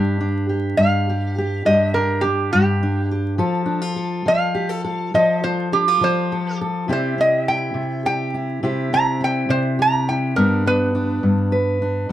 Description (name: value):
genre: acoustic country blues, solo or duo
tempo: 69 BPM (dotted quarters)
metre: 12/8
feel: straight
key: C major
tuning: A4 = 443 Hz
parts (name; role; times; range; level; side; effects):
- fingerpicked steel-string acoustic guitar; accompaniment; 0.0-12.1 s; G2 to B4; -20 LUFS; left 1 dB; none
- lap resonator guitar; melody; 0.8-11.2 s; G4 to Bb5; -20 LUFS; right 1 dB; none
room: moderate booth ambience, RT60 0.2 s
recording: dark, warm production, vinyl crackle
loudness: -17 LUFS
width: side -12 dB against mid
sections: 0.0-12.1 A section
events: resonator guitar played with a steel bar solo 0.0-12.1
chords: 0.0 G5; 3.4 F; 6.9 C; 10.4 G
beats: 0.77 1.65 2.52 | 3.40 4.27 5.14 6.01 | 6.89 7.76 8.63 9.50 | 10.37 11.24 12.11